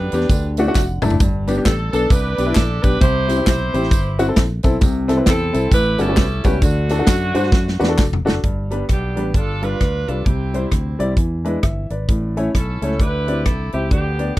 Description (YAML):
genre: uptempo gospel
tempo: 132 BPM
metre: 4/4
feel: swing 61% on 8ths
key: G major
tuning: A4 = 440 Hz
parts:
  - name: clear saxophone section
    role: melody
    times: 0.0-14.4 s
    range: A3 to C5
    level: -23 LUFS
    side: right 2 dB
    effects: none
  - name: warm upright piano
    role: accompaniment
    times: 0.0-14.4 s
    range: G2 to A5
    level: -21 LUFS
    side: left 1 dB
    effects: none
  - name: fingered electric bass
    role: bass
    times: 0.0-14.4 s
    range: F1 to G2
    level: -22 LUFS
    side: equal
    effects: none
  - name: modern studio drum kit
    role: drums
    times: 0.1-14.4 s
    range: hi-hat, kick drum, rim click, snare drum, toms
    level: -17 LUFS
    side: equal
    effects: none
  - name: tambourine and handclaps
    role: percussion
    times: 0.1-8.3 s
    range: none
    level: -32 LUFS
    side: left 1 dB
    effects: none
room: little or no reverb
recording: dry, close 1970s-style studio recording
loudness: -15 LUFS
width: side -16 dB against mid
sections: 0.0-8.4 A section; 8.4-14.4 B section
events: upright piano fill 0.3-1.2; drum fill 0.8-1.2, 7.5-8.4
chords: 0.3 D; 1.2 G; 3.0 C; 4.8 Am/C; 5.7 A13; 6.6 D; 8.4 G; 9.3 G7; 10.3 C; 11.2 E7; 12.1 A; 13.0 D9sus4